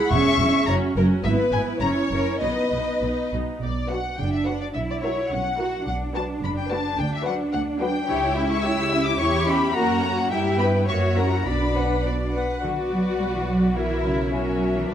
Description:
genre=quick classical-period movement for string orchestra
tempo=107 BPM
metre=2/4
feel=rubato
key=B major, B minor from 3.6 s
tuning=A4 = 440 Hz
part: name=warm symphonic violin section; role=melody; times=0.0-14.9 s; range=A#4 to E6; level=-28 LUFS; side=left 4 dB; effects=none
part: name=rich studio violin section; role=second line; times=0.0-14.9 s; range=C#4 to A#5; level=-26 LUFS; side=left 3 dB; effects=none
part: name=clear symphonic viola section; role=accompaniment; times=0.0-14.9 s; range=F#3 to B4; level=-27 LUFS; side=right 2 dB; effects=none
part: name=rich symphonic cello section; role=bass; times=0.1-14.9 s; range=E2 to G4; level=-27 LUFS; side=right 2 dB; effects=none
part: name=rich symphonic double bass section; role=bass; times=0.1-14.9 s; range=E1 to G2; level=-27 LUFS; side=right 1 dB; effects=none
room=wet recital hall reverb, RT60 1.4 s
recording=dark, warm production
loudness=-20 LUFS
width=side -9 dB against mid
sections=0.0-3.6 A section; 3.6-12.6 B section; 12.6-14.9 B section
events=none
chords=0.1 C#m; 0.7 F#5; 1.2 E; 1.8 F#7; 2.4 B; 3.6 Bm; 4.7 F#7/B; 5.9 Bm; 7.0 Bm/D; 8.1 C#dim; 9.2 C#dim/E; 9.8 F#; 10.3 Em/G; 10.9 F#7; 11.5 Bm; 13.8 F#7/B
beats=| 0.12 0.68 | 1.24 1.81 | 2.41 3.02 | 3.61 4.18 | 4.74 5.31 | 5.87 6.42 | 6.97 7.53 | 8.08 8.63 | 9.20 9.75 | 10.31 10.88 | 11.47 12.05 | 12.64 13.21 | 13.77 14.34 | 14.89

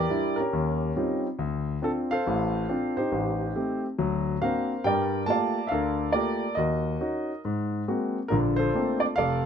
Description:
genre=solo jazz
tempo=139 BPM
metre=4/4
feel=swing 65% on 8ths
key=unclear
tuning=A4 = 440 Hz
part: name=warm concert grand piano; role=solo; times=0.0-9.5 s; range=F1 to A5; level=-24 LUFS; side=equal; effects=none
room=moderate club reverb, RT60 0.5 s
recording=minimal, uncompressed stereo recording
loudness=-24 LUFS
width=side -8 dB against mid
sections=0.0-9.5 A section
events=none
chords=0.0 Em7b5; 0.5 Eb13; 1.4 Dm7; 3.1 Am7b5; 4.0 D7alt; 4.8 Gm9; 6.6 Ebm7; 7.4 Ab9; 8.3 Bbmaj9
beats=0.09 0.52 0.96 | 1.39 1.82 2.25 2.69 | 3.12 3.55 3.98 4.42 | 4.85 5.28 5.71 6.14 | 6.58 7.01 7.44 7.87 | 8.30 8.74 9.17

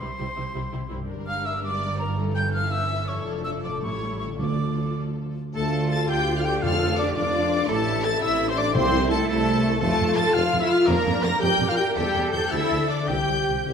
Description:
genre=classical, dramatic, fast romantic movement for symphony orchestra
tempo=111 BPM (dotted quarters)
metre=6/8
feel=rubato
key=D minor, F major from 9.8 s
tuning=A4 = 440 Hz
part: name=warm symphonic violin section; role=melody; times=0.0-13.7 s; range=G4 to Bb6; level=-30 LUFS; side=left 4 dB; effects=none
part: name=silver concert flute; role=second line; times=0.0-13.7 s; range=G4 to G6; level=-31 LUFS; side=left 1 dB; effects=none
part: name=warm symphonic violin section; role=second line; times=0.0-13.7 s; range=G4 to Bb5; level=-33 LUFS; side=left 1 dB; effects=none
part: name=warm symphonic viola section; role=accompaniment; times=0.0-13.7 s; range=E3 to Bb4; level=-29 LUFS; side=right 1 dB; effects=none
part: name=concert harp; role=arpeggios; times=0.0-13.7 s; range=F2 to D6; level=-31 LUFS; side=left 6 dB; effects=none
part: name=dark symphonic cello section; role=bass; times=0.0-13.7 s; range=F2 to Bb4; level=-32 LUFS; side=right 2 dB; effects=none
part: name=warm chamber double bass section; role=bass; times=0.0-13.7 s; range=F1 to F2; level=-30 LUFS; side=right 3 dB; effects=none
part: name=timpani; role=percussion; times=4.4-9.2, 13.7 s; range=F2 to D3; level=-30 LUFS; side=equal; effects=none
part: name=warm oboe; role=second line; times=5.6-13.7 s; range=G4 to Bb5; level=-31 LUFS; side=right 2 dB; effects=none
part: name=mellow French horn section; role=sustained chords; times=5.6-13.7 s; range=G3 to Bb4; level=-30 LUFS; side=left 2 dB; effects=none
part: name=warm tuba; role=bass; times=5.6-13.7 s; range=E1 to D2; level=-32 LUFS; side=right 4 dB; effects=none
room=wet recital hall reverb, RT60 1.7 s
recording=none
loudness=-21 LUFS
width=side -7 dB against mid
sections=0.0-5.6 A section; 5.6-13.7 B section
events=none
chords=0.0 C; 1.1 Gm; 2.2 A7/G; 3.3 Dm/F; 3.8 A7; 4.4 Dm; 6.6 Dm/F; 7.7 Am; 8.8 Am/C; 9.8 F; 10.9 Gm7/F; 12.0 C/E; 12.5 Dm7; 13.1 Csus4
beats=| 0.01 0.55 | 1.09 1.63 | 2.17 2.72 | 3.26 3.82 | 4.40 4.98 | 5.55 6.10 | 6.63 7.16 | 7.69 8.22 | 8.75 9.28 | 9.81 10.35 | 10.88 11.42 | 11.96 12.52 | 13.09 13.66

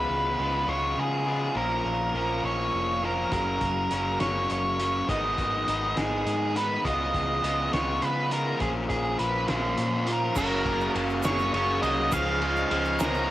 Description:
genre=indie rock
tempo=68 BPM (dotted quarters)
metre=6/8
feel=straight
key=F# major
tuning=A4 = 439 Hz
part: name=octave-fuzz lead guitar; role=melody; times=0.0-13.3 s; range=G#4 to E#5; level=-28 LUFS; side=right 1 dB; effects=distortion, cassette tape
part: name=raw garage guitar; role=riff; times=0.0-13.3 s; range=F#2 to E#4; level=-29 LUFS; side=left 2 dB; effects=overdrive, cassette tape
part: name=deep dub picked electric bass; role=bass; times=0.0-13.3 s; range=E#1 to C#3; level=-33 LUFS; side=equal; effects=none
part: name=cloth-damped thuddy drum kit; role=drums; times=3.3-13.1 s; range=crash cymbal, hi-hat, kick drum, ride cymbal, snare drum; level=-33 LUFS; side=equal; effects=cassette tape
part: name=warm analog pad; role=sustained chords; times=10.4-13.3 s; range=E#3 to G#4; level=-41 LUFS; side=right 2 dB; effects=none
part: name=crunchy overdriven guitar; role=riff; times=10.4-13.3 s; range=C#3 to G#4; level=-33 LUFS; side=right 6 dB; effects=wide subtle chorus, cassette tape
part: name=egg shaker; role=percussion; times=10.4-13.2 s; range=none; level=-44 LUFS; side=right 9 dB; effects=none
room=light reverb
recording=home recording on cassette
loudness=-24 LUFS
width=side -14 dB against mid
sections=0.0-10.4 A section; 10.4-13.3 B section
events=none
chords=0.0 C#5; 1.6 A#m; 3.3 F#; 5.1 G#m; 6.8 C#5; 8.6 A#m; 10.4 F#add9; 12.1 C#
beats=0.68 | 1.56 2.44 | 3.32 4.20 | 5.09 5.97 | 6.85 7.73 | 8.61 9.49 | 10.37 11.24 | 12.12 13.00

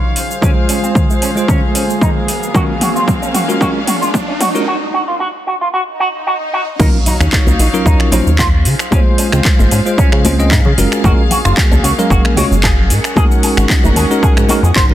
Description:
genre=nu-disco, nu disco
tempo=113 BPM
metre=4/4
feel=swing 53% on 16ths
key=unclear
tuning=A4 = 441 Hz
part: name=warm studio string section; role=sustained chords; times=0.0-14.9 s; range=Gb3 to Gb5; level=-22 LUFS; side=left 1 dB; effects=sidechain pumping
part: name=riser, swell and impact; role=sound effects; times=0.2-8.9 s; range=none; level=-24 LUFS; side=right 1 dB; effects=none
part: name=house drum kit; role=drums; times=0.2-14.9 s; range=crash cymbal, finger snaps, handclaps, hi-hat, shaker, toms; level=-18 LUFS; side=equal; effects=overdrive
part: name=bell-like tine electric piano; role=accompaniment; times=0.4-14.9 s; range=Gb3 to F5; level=-18 LUFS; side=right 1 dB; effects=fast stereo tremolo, sidechain pumping, analog delay
part: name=electric guitar with an envelope filter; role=riff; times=0.4-14.8 s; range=Ab3 to C5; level=-20 LUFS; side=right 1 dB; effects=lush chorus, low-pass filter, analog delay
part: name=electronic kick drum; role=drums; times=0.4-14.9 s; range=none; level=-13 LUFS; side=equal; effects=overdrive
part: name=chorused synth bass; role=bass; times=6.8-14.9 s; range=Gb1 to Db3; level=-13 LUFS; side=equal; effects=none
part: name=congas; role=percussion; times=6.8-14.9 s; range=none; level=-22 LUFS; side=left 3 dB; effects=none
room=light reverb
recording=dense, heavily limited modern master, high-pass filter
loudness=-10 LUFS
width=side -13 dB against mid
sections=0.0-6.8 A section; 6.8-14.9 B section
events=build-up 0.0-6.8; drum fill 0.0-4.7; riser 0.2-4.7; break 4.7-6.8; swell 5.9-6.8; drop 6.8-14.9; impact 6.8-8.9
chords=0.2 Dbmaj7; 2.3 Gbmaj9; 6.8 Ebm9; 8.7 Dbmaj7; 10.8 Gbmaj9; 12.9 Ab9sus4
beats=| 0.42 0.96 1.49 2.02 | 2.55 3.08 3.61 4.14 | 4.67 5.20 5.74 6.27 | 6.80 7.33 7.86 8.39 | 8.92 9.45 9.98 10.51 | 11.04 11.58 12.11 12.64 | 13.17 13.70 14.23 14.76

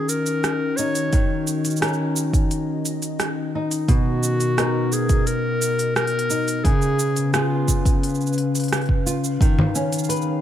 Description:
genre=folktronica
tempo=87 BPM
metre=4/4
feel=straight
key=unclear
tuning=A4 = 440 Hz
part: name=mellow clarinet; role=melody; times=0.0-8.0 s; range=F4 to Db5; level=-26 LUFS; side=left 1 dB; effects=digital delay
part: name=warbly tape-like pad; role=sustained chords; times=0.0-10.4 s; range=B2 to F5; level=-27 LUFS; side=left 1 dB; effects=chorus, built-in reverb
part: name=flamenco guitar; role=arpeggios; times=0.0-10.4 s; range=B2 to Cb5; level=-24 LUFS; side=left 2 dB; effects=digital delay
part: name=organic electronic drum kit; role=drums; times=0.1-10.3 s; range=cabasa, congas, hi-hat, rim click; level=-25 LUFS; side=right 1 dB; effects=none
part: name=electronic kick drum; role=drums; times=1.1-9.5 s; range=none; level=-19 LUFS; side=right 1 dB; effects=none
room=light reverb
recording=none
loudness=-19 LUFS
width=side -11 dB against mid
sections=0.0-9.4 A section; 9.4-10.4 B section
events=none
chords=0.0 Ebm7; 3.9 Bmaj7; 6.6 Db7; 9.4 Db7/Eb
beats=0.44 | 1.13 1.82 2.51 3.20 | 3.88 4.58 5.26 5.95 | 6.64 7.33 8.02 8.71 | 9.40 10.09

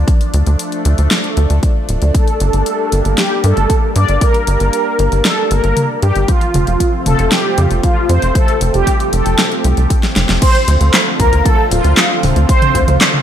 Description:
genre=synthwave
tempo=116 BPM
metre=4/4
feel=straight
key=D minor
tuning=A4 = 440 Hz
part: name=lush unison pad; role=sustained chords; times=0.0-13.2 s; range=C3 to G4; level=-21 LUFS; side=equal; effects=chorus, phaser, sidechain pumping
part: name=tight sequencer bass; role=bass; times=0.0-13.0 s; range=D1 to G2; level=-13 LUFS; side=equal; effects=sidechain pumping
part: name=electronic kick drum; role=drums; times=0.1-12.9 s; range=none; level=-13 LUFS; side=equal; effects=studio reverb
part: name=pop drum kit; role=drums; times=0.1-13.2 s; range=crash cymbal, handclaps, hi-hat, snare drum, toms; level=-16 LUFS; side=left 1 dB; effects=studio reverb, gated reverb
part: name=mellow synth brass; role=melody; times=2.1-13.0 s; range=F4 to D5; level=-17 LUFS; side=right 1 dB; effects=chorus, cassette tape, digital delay
part: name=airy dreamy lead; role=second line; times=10.4-13.0 s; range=F5 to C6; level=-21 LUFS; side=right 1 dB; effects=chorus, digital delay
room=light reverb, digital ambience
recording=none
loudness=-11 LUFS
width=side -10 dB against mid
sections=0.0-10.4 A section; 10.4-13.2 B section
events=drum fill 10.0-10.4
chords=0.0 Bb/D (rootless); 2.1 Gm; 6.3 F; 10.4 Dm7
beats=| 0.08 0.59 1.11 1.63 | 2.15 2.66 3.18 3.70 | 4.21 4.73 5.25 5.77 | 6.28 6.80 7.32 7.84 | 8.35 8.87 9.39 9.90 | 10.42 10.94 11.46 11.97 | 12.49 13.01

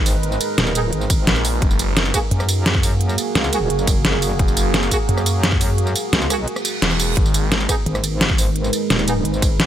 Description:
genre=dark technical drum and bass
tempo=173 BPM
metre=4/4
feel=straight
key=unclear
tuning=A4 = 439 Hz
part: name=deep dark ambient pad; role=sustained chords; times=0.0-9.7 s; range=G#3 to B4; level=-24 LUFS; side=right 2 dB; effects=chorus, built-in reverb, sidechain pumping
part: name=metallic wobble bass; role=bass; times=0.0-9.7 s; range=D#1 to F#2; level=-20 LUFS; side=equal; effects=chorus
part: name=dubstep drum kit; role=drums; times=0.1-9.7 s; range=hi-hat, ride cymbal, rim click, snare drum, tambourine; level=-20 LUFS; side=equal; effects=none
part: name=warm brass ensemble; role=stabs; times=0.8-9.1 s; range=A#3 to G#4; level=-28 LUFS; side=right 2 dB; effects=tape echo
part: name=electronic kick drum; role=drums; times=1.1-9.5 s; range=none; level=-19 LUFS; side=equal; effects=none
part: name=phased detuned saw bass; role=bass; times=1.3-2.1, 4.4-7.7 s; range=E1 to A#1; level=-20 LUFS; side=equal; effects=phaser, tube saturation, sidechain pumping
part: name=reverse cymbal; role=sound effects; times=6.6-7.2 s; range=none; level=-27 LUFS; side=right 5 dB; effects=none
room=light reverb, digital ambience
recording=none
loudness=-16 LUFS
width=side -11 dB against mid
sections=0.0-9.7 A section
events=kick drops out 6.5-7.2; reverse cymbal 6.6-7.2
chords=0.0 G#m; 1.6 F#add9; 7.2 G#m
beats=| 0.23 0.58 0.93 1.27 | 1.62 1.97 2.31 2.66 | 3.01 3.35 3.70 4.05 | 4.39 4.74 5.09 5.43 | 5.78 6.13 6.47 6.82 | 7.17 7.52 7.86 8.21 | 8.56 8.90 9.25 9.60

